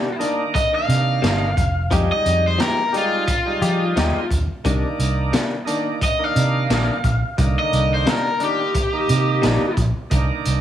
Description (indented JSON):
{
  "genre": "straight-eighth soul blues",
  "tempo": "88 BPM",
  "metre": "4/4",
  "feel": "swing 55% on 16ths",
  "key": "C minor",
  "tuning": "A4 = 440 Hz",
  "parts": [
    { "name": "cranked stack guitar", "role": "melody", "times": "0.0-9.8 s", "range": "F4 to F5", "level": "-22 LUFS", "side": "left 1 dB", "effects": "overdrive, spring reverb" },
    { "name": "direct-recorded clean electric guitar", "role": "stabs", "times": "0.0-9.7 s", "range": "C3 to G4", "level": "-24 LUFS", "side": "left 5 dB", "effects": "none" },
    { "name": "bright tonewheel organ", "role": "accompaniment", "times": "0.2-10.6 s", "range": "D3 to F4", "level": "-25 LUFS", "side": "right 5 dB", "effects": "slow rotary speaker, overdrive" },
    { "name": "crunchy breakbeat drum kit", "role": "drums", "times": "0.2-10.6 s", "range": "hi-hat, kick drum, snare drum", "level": "-23 LUFS", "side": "equal", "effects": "none" },
    { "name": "vintage muted fingered electric bass", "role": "bass", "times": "0.9-10.6 s", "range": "F1 to F3", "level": "-20 LUFS", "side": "equal", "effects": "none" }
  ],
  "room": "light reverb",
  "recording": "small room ambience",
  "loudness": "-17 LUFS",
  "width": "side -10 dB against mid",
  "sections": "0.0-10.6 A section",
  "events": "none",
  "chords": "0.0 Cm9; 1.9 Fm9; 4.6 Cm9"
}